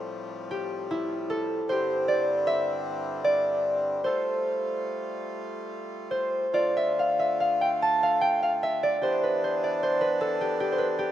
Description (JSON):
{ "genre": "celtic folk, Celtic slow air", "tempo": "70-78 BPM", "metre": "3/4", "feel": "rubato", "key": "unclear", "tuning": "A4 = 440 Hz", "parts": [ { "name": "concert harp", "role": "accompaniment", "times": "0.0-11.1 s", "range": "C4 to A5", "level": "-25 LUFS", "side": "equal", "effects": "none" }, { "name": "accordion", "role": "sustained chords", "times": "0.0-11.1 s", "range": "G2 to F4", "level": "-34 LUFS", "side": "left 1 dB", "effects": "none" } ], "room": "moderate lush hall reverb, RT60 2.7 s", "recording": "rough home demo mix", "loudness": "-24 LUFS", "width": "side -11 dB against mid", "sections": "0.0-11.1 A section", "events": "harp solo 0.0-11.1", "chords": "0.0 Fadd9/A; 1.7 Csus2/G; 4.0 Fadd9; 6.5 Dm; 9.0 Em7" }